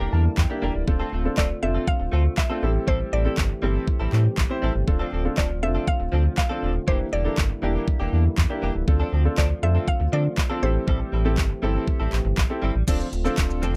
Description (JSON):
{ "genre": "dance-pop", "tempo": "120 BPM", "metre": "4/4", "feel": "straight", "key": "D minor", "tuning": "A4 = 440 Hz", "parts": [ { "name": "warm concert grand piano", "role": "accompaniment", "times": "0.0-13.7 s", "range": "Bb3 to A5", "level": "-32 LUFS", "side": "equal", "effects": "sidechain pumping" }, { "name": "dark French horn section", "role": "sustained chords", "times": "0.0-13.8 s", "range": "D3 to G4", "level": "-35 LUFS", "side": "equal", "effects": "sidechain pumping" }, { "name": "direct-recorded clean electric guitar", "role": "riff", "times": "0.0-13.8 s", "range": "E3 to Bb4", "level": "-35 LUFS", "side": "equal", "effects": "lush chorus" }, { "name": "sub bass with octave", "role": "bass", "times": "0.0-13.8 s", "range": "C#1 to D3", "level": "-25 LUFS", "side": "equal", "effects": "sidechain pumping" }, { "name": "downlifter", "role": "sound effects", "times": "0.0-0.9 s", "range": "none", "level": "barely audible", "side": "none", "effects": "none" }, { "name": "smooth R&B drum kit", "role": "drums", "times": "0.4-13.7 s", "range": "crash cymbal, handclaps, hi-hat, kick drum, shaker", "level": "-25 LUFS", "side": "equal", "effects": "none" }, { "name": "mallet-like synth pluck", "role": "melody", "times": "1.4-12.3 s", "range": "C5 to F5", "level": "-32 LUFS", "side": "equal", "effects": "chorus" } ], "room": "little or no reverb", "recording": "dry, close 1970s-style studio recording", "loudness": "-23 LUFS", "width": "mono", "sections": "0.0-12.9 A section", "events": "grand piano fill 0.0-0.9", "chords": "0.0 Em7b5; 0.9 Dm7; 2.6 Am7; 4.9 Dm7; 6.9 Em7b5; 8.9 Dm7; 10.6 Am7; 12.9 Dm7" }